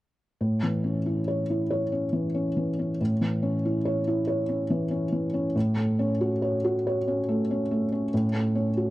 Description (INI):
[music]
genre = classical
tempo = 70 BPM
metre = 3/4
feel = rubato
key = A major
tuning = A4 = 440 Hz
[part]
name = felt-muted upright piano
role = accompaniment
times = 0.4-8.9 s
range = A2 to C#5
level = -24 LUFS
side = equal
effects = none
[sound]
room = little or no reverb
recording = dry, close 1970s-style studio recording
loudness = -24 LUFS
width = side -17 dB against mid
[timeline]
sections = 0.4-8.9 A section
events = none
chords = 0.4 A; 5.5 F#m/A